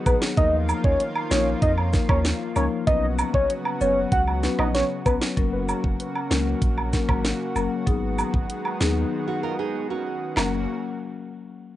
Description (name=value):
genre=dancehall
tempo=96 BPM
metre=4/4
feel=straight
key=F# major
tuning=A4 = 440 Hz
part: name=lush unison pad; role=sustained chords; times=0.0-10.7 s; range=C#3 to F#4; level=-32 LUFS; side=right 1 dB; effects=chorus, sidechain pumping, cassette tape
part: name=warm velvety synth lead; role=melody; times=0.1-5.2 s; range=B4 to F#5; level=-24 LUFS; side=equal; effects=chorus, tremolo, cassette tape, tape echo
part: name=marimba with medium mallets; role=accompaniment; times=0.1-10.6 s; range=E#3 to B4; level=-28 LUFS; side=left 6 dB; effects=sidechain pumping, cassette tape
part: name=punchy sub bass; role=bass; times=0.1-10.7 s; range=F#1 to E#2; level=-26 LUFS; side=right 1 dB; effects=none
part: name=island pop drum kit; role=drums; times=0.1-10.5 s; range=handclaps, hi-hat, kick drum, rim click, snare drum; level=-24 LUFS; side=right 1 dB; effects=none
part: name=cabasa and woodblock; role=percussion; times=0.1-10.7 s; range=none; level=-30 LUFS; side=right 2 dB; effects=none
part: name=nylon-string guitar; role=arpeggios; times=9.3-10.3 s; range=C#4 to A#4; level=-31 LUFS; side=right 7 dB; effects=cassette tape, tape echo
room=light reverb, studio ambience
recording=home recording on cassette, nothing above 10.3 kHz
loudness=-21 LUFS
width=side -14 dB against mid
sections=0.0-5.4 A section; 5.4-10.4 B section; 10.4-11.8 C section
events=break 9.1-10.4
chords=0.4 D#sus2; 2.9 Bsus2; 5.4 F#; 7.9 G#m7; 10.4 F#